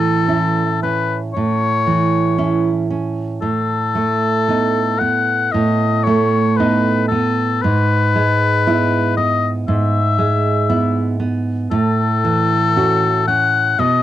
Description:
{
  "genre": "romantic duo for oboe and classical guitar",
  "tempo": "58 BPM",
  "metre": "4/4",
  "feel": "rubato",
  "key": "E major",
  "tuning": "A4 = 442 Hz",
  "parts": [
    { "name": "warm oboe", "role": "melody", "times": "0.0-14.0 s", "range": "A4 to F#5", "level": "-18 LUFS", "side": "left 6 dB", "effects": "none" },
    { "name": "nylon-string guitar", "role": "accompaniment", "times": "0.0-14.0 s", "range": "G#2 to F#4", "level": "-16 LUFS", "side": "right 3 dB", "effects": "cassette tape" }
  ],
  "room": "moderate booth ambience, RT60 0.3 s",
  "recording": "home recording on cassette",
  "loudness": "-14 LUFS",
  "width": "side -12 dB against mid",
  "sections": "0.0-14.0 A section",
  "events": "none",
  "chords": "0.0 A; 3.4 B7/A; 7.6 E/G#; 11.7 F#m7/A"
}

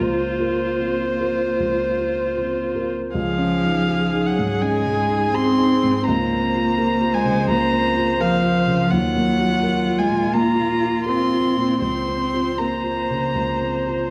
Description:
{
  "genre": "neoclassical piano and strings",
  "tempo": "75-86 BPM",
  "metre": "4/4",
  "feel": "rubato",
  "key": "Bb minor",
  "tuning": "A4 = 439 Hz",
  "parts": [
    { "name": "muted violin", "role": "melody", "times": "0.0-14.1 s", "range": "C5 to C6", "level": "-26 LUFS", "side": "equal", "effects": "none" },
    { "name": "muted cello", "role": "second line", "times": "0.0-14.1 s", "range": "F3 to C4", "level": "-25 LUFS", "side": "equal", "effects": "none" },
    { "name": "dark grand piano", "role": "accompaniment", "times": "0.0-14.1 s", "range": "Db2 to Bb4", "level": "-27 LUFS", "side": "equal", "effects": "none" },
    { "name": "muted viola", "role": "accompaniment", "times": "0.0-14.1 s", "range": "F4 to C5", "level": "-28 LUFS", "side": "equal", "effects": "none" }
  ],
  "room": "wet recital hall reverb, RT60 1.4 s",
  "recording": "dark, warm production",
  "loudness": "-20 LUFS",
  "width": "mono",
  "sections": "0.0-3.1 A section; 3.1-14.1 B section",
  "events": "none",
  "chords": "0.0 Bbmadd9/Db; 3.1 Dbsus2; 6.1 Bbmadd9/Db; 8.9 Ebmadd9; 11.8 Bbmadd9/Db"
}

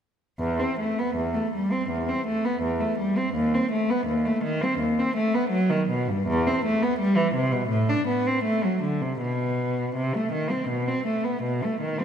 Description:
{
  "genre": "classical, baroque-style suite movement for unaccompanied cello",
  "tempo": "82 BPM",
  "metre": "4/4",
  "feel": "uneven beats, rubato",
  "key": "E minor",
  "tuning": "A4 = 440 Hz",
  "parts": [
    { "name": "warm cello", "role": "solo", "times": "0.4-12.0 s", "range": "D#2 to D4", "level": "-23 LUFS", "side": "equal", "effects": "none" }
  ],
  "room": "wet scoring stage reverb, RT60 1.8 s",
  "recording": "none",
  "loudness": "-23 LUFS",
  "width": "side -8 dB against mid",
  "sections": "0.4-12.0 A section",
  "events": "none",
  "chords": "none"
}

